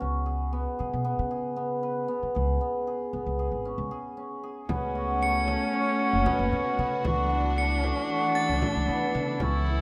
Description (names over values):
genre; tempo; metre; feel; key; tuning
contemporary instrumental, chamber music in an uneven meter; 230 BPM (eighths); 9/8; straight; C# phrygian; A4 = 440 Hz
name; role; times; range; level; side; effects
cimbalom; arpeggios; 0.0-9.8 s; A3 to B4; -31 LUFS; equal; none
upright bass; bass; 0.0-9.8 s; F#1 to C#3; -32 LUFS; equal; none
warm viola; second line; 4.7-9.8 s; C#4 to E4; -34 LUFS; equal; none
dark symphonic string section; sustained chords; 4.7-9.8 s; E3 to F#4; -36 LUFS; equal; none
frame drum; percussion; 4.7-9.6 s; none; -37 LUFS; equal; none
crotales; texture; 5.2-9.1 s; A6 to C#7; -36 LUFS; equal; none
room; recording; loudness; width
light reverb; close, detailed microphones; -28 LUFS; mono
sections
0.0-4.7 A section; 4.7-9.8 B section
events
break 3.9-4.7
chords
0.0 C#5; 4.7 A69/C#; 7.0 Dmaj9/C#